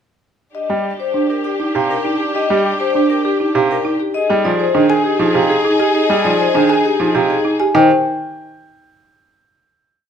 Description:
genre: classical, minimalist pattern music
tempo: 200 BPM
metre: 6/4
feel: straight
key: Eb major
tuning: A4 = 443 Hz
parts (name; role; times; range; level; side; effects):
- vibraphone with medium mallets; melody; 0.5-7.9 s; G4 to F5; -19 LUFS; left 6 dB; none
- clear clarinet; second line; 0.5-7.6 s; G4 to Ab4; -23 LUFS; right 2 dB; none
- rich studio string section; sustained chords; 0.5-7.6 s; D4 to Ab4; -22 LUFS; left 2 dB; none
- bright baby grand piano; accompaniment; 0.7-7.9 s; C3 to G3; -19 LUFS; right 2 dB; none
- folk marimba with medium hard mallets; arpeggios; 0.7-7.9 s; D4 to Ab4; -18 LUFS; right 4 dB; none
- xylophone with soft rubber mallets; arpeggios; 4.9-7.9 s; G5 to Ab5; -20 LUFS; left 3 dB; none
room: moderate large studio reverb, RT60 1.1 s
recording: none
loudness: -13 LUFS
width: side -8 dB against mid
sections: 0.6-7.8 A section; 7.8-9.6 final chord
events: none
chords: 0.6 Ebmaj7; 4.2 Fm9; 7.8 Eb

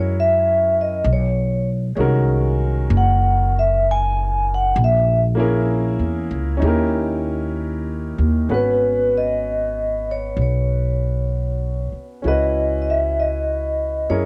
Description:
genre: jazz ballad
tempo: 64 BPM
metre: 4/4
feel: swing 67% on 8ths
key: G# minor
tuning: A4 = 441 Hz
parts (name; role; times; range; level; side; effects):
- vibraphone with soft mallets; melody; 0.0-14.3 s; B4 to G#5; -22 LUFS; equal; cassette tape
- clear upright piano; accompaniment; 0.0-14.3 s; D#3 to B4; -27 LUFS; equal; cassette tape
- upright bass; bass; 0.0-14.3 s; F#1 to F#2; -23 LUFS; equal; none
room: light reverb, studio ambience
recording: home recording on cassette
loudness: -19 LUFS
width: mono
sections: 0.0-8.5 A section; 8.5-14.3 B section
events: vibraphone solo 0.0-8.5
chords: 0.0 F#9; 1.0 Bmaj13; 4.8 A#m7b5; 6.6 D#7b9; 8.5 G#m7; 12.2 C#m11

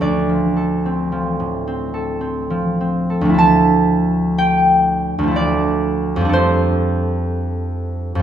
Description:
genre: classical, solo harp piece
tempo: 48-63 BPM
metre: 3/4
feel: rubato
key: D minor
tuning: A4 = 440 Hz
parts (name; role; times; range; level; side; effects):
- concert harp; solo; 0.0-8.2 s; D2 to A5; -15 LUFS; equal; none
room: wet recital hall reverb, RT60 1.5 s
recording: recorded in a church or concert hall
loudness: -15 LUFS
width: side -9 dB against mid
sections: 0.0-3.4 A section; 3.4-8.2 B section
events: none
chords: 0.0 Dm7; 3.4 Dmadd9; 6.3 F69

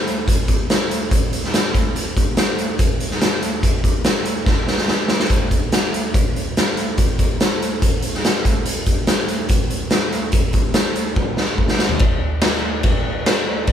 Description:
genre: rock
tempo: 143 BPM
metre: 4/4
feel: straight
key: none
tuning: none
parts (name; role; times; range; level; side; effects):
- raw garage drum kit; drums; 0.1-13.7 s; crash cymbal, hi-hat, kick drum, snare drum, toms; -16 LUFS; equal; none
room: little or no reverb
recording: band playing live in one room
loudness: -16 LUFS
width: side -9 dB against mid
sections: 0.0-12.0 A section; 12.0-13.7 B section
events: drum fill 4.5-5.3, 11.2-12.0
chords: none

